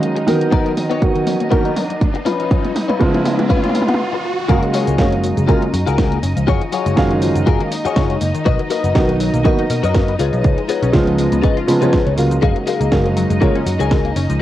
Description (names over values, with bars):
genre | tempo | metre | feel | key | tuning
nu-disco, nu disco | 121 BPM | 4/4 | swing 55% on 16ths | unclear | A4 = 440 Hz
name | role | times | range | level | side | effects
dark baby grand piano | accompaniment | 0.0-13.6 s | C#3 to E#5 | -18 LUFS | right 2 dB | cassette tape, analog delay
dark studio violin section | sustained chords | 0.0-14.4 s | D#4 to D#5 | -28 LUFS | right 1 dB | sidechain pumping, low-pass filter, cassette tape
analog pluck | arpeggios | 0.0-14.3 s | D#3 to B4 | -25 LUFS | left 6 dB | chorus, phaser, sidechain pumping, cassette tape, analog delay
picked electric bass | bass | 0.0-14.4 s | F#1 to B2 | -20 LUFS | right 1 dB | tube saturation, high-pass filter
house drum kit | drums | 0.0-14.4 s | hi-hat, shaker, snare drum, toms | -24 LUFS | right 1 dB | cassette tape
riser | sound effects | 0.7-4.5 s | none | -26 LUFS | right 1 dB | none
direct-recorded clean electric guitar | riff | 0.2-14.1 s | B3 to G#5 | -22 LUFS | left 7 dB | ensemble chorus, cassette tape, analog delay
electronic kick drum | drums | 0.5-14.0 s | none | -16 LUFS | right 1 dB | cassette tape
room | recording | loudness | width
moderate spring reverb, RT60 2.0 s | home recording on cassette | -14 LUFS | side -13 dB against mid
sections
0.0-4.5 A section; 4.5-14.4 B section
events
build-up 0.0-4.5; drum fill 0.0-4.0; filter sweep on synth arpeggio sound 0.0-4.5; riser 0.7-4.5; break 4.0-4.5; drop 4.5-14.4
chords
0.0 D#m11/F#; 0.5 Bmaj7; 2.3 C#7; 4.5 D#m11/F#; 8.5 Bmaj7; 10.2 C#7; 12.4 D#m11/F#